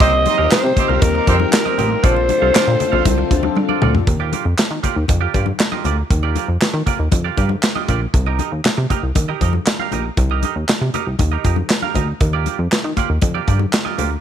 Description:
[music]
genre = early-eighties boogie funk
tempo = 118 BPM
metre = 4/4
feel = straight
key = unclear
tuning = A4 = 440 Hz
[part]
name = growling alto saxophone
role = melody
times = 0.0-3.6 s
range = Bb4 to Eb5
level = -18 LUFS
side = equal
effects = slapback echo
[part]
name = warm horn section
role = second line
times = 0.0-1.4 s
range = Bb3 to Eb5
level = -22 LUFS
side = right 3 dB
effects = none
[part]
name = chorused polysynth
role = accompaniment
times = 0.0-4.1 s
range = Bb3 to A4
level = -23 LUFS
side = left 14 dB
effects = phaser
[part]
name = string machine, violins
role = sustained chords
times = 0.0-4.0 s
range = D3 to G4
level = -26 LUFS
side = equal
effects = ensemble chorus
[part]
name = semi-hollow electric guitar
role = riff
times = 0.0-14.2 s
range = Bb3 to F5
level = -24 LUFS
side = right 15 dB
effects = analog chorus
[part]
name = chorused synth bass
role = bass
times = 0.0-14.2 s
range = A1 to Eb3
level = -19 LUFS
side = equal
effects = none
[part]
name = modern studio drum kit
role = drums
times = 0.0-14.1 s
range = handclaps, hi-hat, kick drum, snare drum, toms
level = -18 LUFS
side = equal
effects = none
[part]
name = congas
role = percussion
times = 0.0-14.1 s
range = none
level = -27 LUFS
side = left 11 dB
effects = none
[sound]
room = small room ambience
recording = 1960s-style stereo with parts hard left and right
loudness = -15 LUFS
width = side -9 dB against mid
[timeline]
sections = 0.0-4.1 A section; 4.1-14.2 B section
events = drum fill 3.6-4.1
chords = 0.0 Cm7; 2.0 Bbmaj9; 4.1 Ebmaj9; 8.1 Cm7; 12.2 Ebmaj9

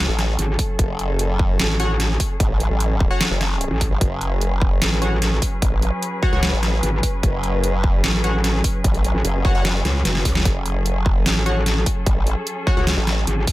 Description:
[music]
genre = heavy wobble dubstep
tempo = 149 BPM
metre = 4/4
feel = half-time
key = F# minor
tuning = A4 = 435 Hz
[part]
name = muted studio string section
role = sustained chords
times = 0.0-13.5 s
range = F#3 to B4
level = -27 LUFS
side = equal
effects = sidechain pumping, low-pass filter
[part]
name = metallic wobble bass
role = bass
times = 0.0-13.5 s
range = F#1 to C#2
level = -20 LUFS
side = equal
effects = chorus, overdrive
[part]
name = formant-sweep wobble bass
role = bass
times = 0.1-13.3 s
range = F#1 to A1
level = -21 LUFS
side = equal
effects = chorus, overdrive
[part]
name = dubstep drum kit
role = drums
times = 0.2-13.5 s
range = hi-hat, snare drum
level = -22 LUFS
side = equal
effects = overdrive
[part]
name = electronic kick drum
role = drums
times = 0.6-13.5 s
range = none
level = -20 LUFS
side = equal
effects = overdrive
[part]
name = supersaw stab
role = stabs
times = 1.8-12.9 s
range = F#4 to F#5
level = -28 LUFS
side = left 2 dB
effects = ping-pong delay
[sound]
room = little or no reverb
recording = none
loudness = -17 LUFS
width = side -17 dB against mid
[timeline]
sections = 0.0-13.5 A section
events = drum fill 9.8-10.5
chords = 0.0 F#madd9

